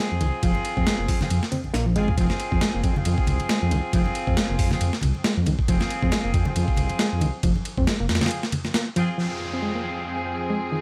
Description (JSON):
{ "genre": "breakbeat, breaks", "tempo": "137 BPM", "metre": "4/4", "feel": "swing 56% on 16ths", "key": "F minor", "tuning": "A4 = 440 Hz", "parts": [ { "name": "barky reed electric piano", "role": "riff", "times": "0.0-10.8 s", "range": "Eb3 to C4", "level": "-29 LUFS", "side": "equal", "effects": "overdrive, fast tremolo, tube saturation, vintage 12-bit sampler grit, low-pass filter" }, { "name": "warm horn section", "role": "stabs", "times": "0.0-10.8 s", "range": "C4 to Ab4", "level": "-33 LUFS", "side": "equal", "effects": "dub echo" }, { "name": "dark detuned saw bass", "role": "bass", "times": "0.1-8.2 s", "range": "F1 to F2", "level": "-27 LUFS", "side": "equal", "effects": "none" }, { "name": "breakbeat sampler-style drum kit", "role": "drums", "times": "0.2-9.1 s", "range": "hi-hat, kick drum, ride cymbal, snare drum", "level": "-27 LUFS", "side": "equal", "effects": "none" }, { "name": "congas", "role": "percussion", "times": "0.2-9.1 s", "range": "none", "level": "-34 LUFS", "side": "equal", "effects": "none" }, { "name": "rich studio string section", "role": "sustained chords", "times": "9.2-10.8 s", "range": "F2 to Ab4", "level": "-33 LUFS", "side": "equal", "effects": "vintage 12-bit sampler grit, sidechain pumping" }, { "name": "downlifter", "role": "sound effects", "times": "9.2-10.8 s", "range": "none", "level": "-38 LUFS", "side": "equal", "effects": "none" } ], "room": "digital ambience", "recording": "vinyl crackle", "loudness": "-24 LUFS", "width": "mono", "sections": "0.0-9.2 A section; 9.2-10.8 B section", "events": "break 8.3-9.2", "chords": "0.0 Fm" }